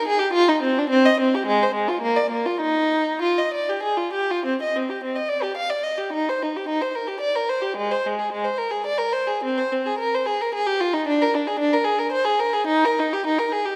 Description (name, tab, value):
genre	classical, baroque-style suite movement for unaccompanied violin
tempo	97-114 BPM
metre	3/4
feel	rubato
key	Eb major, C minor from 4.4 s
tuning	A4 = 440 Hz
part	warm violin	solo	0.0-13.8 s	Ab3 to F5	-22 LUFS	equal	none
room	moderate concert hall reverb, RT60 2.1 s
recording	none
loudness	-22 LUFS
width	mono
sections	0.0-4.4 A section; 4.4-13.8 A section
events	none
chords	none